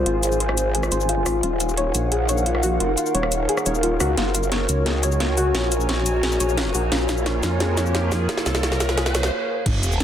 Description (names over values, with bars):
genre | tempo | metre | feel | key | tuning
dark technical drum and bass | 175 BPM | 4/4 | straight | unclear | A4 = 438 Hz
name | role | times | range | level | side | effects
dark analog pad | sustained chords | 0.0-10.0 s | Bb3 to Ab5 | -28 LUFS | right 1 dB | chorus, sidechain pumping
growl bass | bass | 0.0-10.0 s | Eb1 to F2 | -23 LUFS | equal | chorus, tube saturation
warbly tape-like pad | texture | 0.0-10.0 s | Eb4 to Bb5 | -28 LUFS | left 1 dB | chorus, built-in reverb, phaser, sidechain pumping
soft round pluck | arpeggios | 0.1-9.2 s | F4 to Db5 | -26 LUFS | left 2 dB | lush chorus, sidechain pumping, digital delay
drum and bass drum kit | drums | 0.1-10.0 s | crash cymbal, hi-hat, rim click, shaker, snare drum | -25 LUFS | equal | none
riser and sub drop | sound effects | 6.1-10.0 s | none | -30 LUFS | right 1 dB | none
electronic kick drum | drums | 9.7 s | none | -22 LUFS | equal | none
room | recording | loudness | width
moderate lush hall reverb, RT60 1.9 s, digital ambience | dense, heavily limited modern master | -19 LUFS | side -10 dB against mid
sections
0.0-9.7 A section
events
build-up 0.0-9.7; drum fill 4.2-9.3; riser 6.1-9.3; stop 9.3-9.7; impact 9.7-10.0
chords
0.0 Fm; 1.4 Ebm; 4.2 Gb; 6.9 Bbm